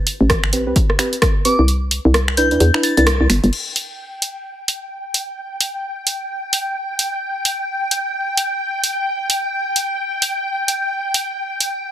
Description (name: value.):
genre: UK garage, two-step garage.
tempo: 130 BPM.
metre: 4/4.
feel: swing 60% on 16ths.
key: unclear.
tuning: A4 = 439 Hz.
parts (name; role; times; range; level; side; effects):
punchy analog drum machine; drums; 0.1-11.7 s; crash cymbal, finger snaps, hi-hat, rim click; -18 LUFS; right 1 dB; overdrive.
hollow knocking FM bass; bass; 0.2-3.5 s; G1 to E2; -15 LUFS; equal; none.
electronic kick drum; drums; 0.3-1.3 s; none; -18 LUFS; equal; overdrive.
deep mellow chord stab; stabs; 0.5-3.0 s; C4 to B4; -21 LUFS; right 1 dB; chorus, digital delay.
soft synth bell; melody; 1.5-3.0 s; D6 to A6; -22 LUFS; left 2 dB; chorus, phaser, digital delay.
soft string machine; sustained chords; 3.5-11.9 s; G5; -22 LUFS; equal; ensemble chorus, sidechain pumping.
room: moderate digital room reverb, RT60 1.3 s.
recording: none.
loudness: -16 LUFS.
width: side -11 dB against mid.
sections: 0.0-3.5 A section; 3.5-11.9 B section.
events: kick drops out 1.7-3.5; band accent 3.1.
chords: 0.0 Am9; 1.7 Cmaj9; 3.5 N.C..